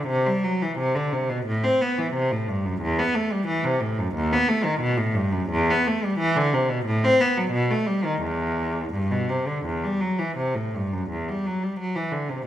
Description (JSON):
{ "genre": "classical, baroque-style suite movement for unaccompanied cello", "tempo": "78-92 BPM", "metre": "4/4", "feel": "rubato", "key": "E minor", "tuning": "A4 = 439 Hz", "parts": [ { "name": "clear cello", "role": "solo", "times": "0.0-12.5 s", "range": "D#2 to C4", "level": "-22 LUFS", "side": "equal", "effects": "none" } ], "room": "moderate recital hall reverb, RT60 1.5 s", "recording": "none", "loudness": "-22 LUFS", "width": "side -11 dB against mid", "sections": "0.0-11.1 A section; 11.1-12.5 B section", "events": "none", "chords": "none" }